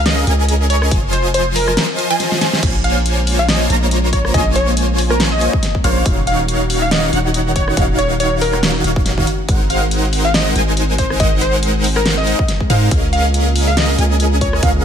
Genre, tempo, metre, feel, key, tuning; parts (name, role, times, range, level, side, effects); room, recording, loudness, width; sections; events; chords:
future bass; 140 BPM; 4/4; swing 56% on 16ths, half-time; Bb minor; A4 = 445 Hz
plucky unison lead; melody; 0.0-14.6 s; Bb4 to F5; -21 LUFS; left 1 dB; sidechain pumping, digital delay
wide unison pluck; arpeggios; 0.0-14.8 s; F5 to Bb5; -26 LUFS; right 2 dB; phaser, sidechain pumping, ping-pong delay
supersaw chords; riff; 0.0-14.8 s; Eb3 to Bb5; -19 LUFS; equal; sidechain pumping
long sustained 808-style bass; bass; 0.0-14.8 s; Eb1 to Ab2; -17 LUFS; equal; sidechain pumping
big-room dance drum kit; drums; 0.1-14.7 s; crash cymbal, hi-hat, rim click, snare drum; -20 LUFS; equal; small room ambience
electronic kick drum; drums; 0.9-14.7 s; -18 LUFS; equal; small room ambience
airy breathy pad; sustained chords; 3.1-14.8 s; Db3 to Ab4; -26 LUFS; equal; chorus, sidechain pumping
noise sweep; sound effects; 14.8 s; -29 LUFS; left 4 dB
little or no reverb; -13 LUFS; side -8 dB against mid
0.0-2.6 A section; 2.6-14.8 A section
drop 0.0-2.6, 2.6-14.8; drum fill 2.3-2.6; noise sweep 14.8
0.0 Db6; 0.9 Fm7; 2.6 Bbm9; 6.1 Ebm9; 9.3 Ab9; 12.9 Db6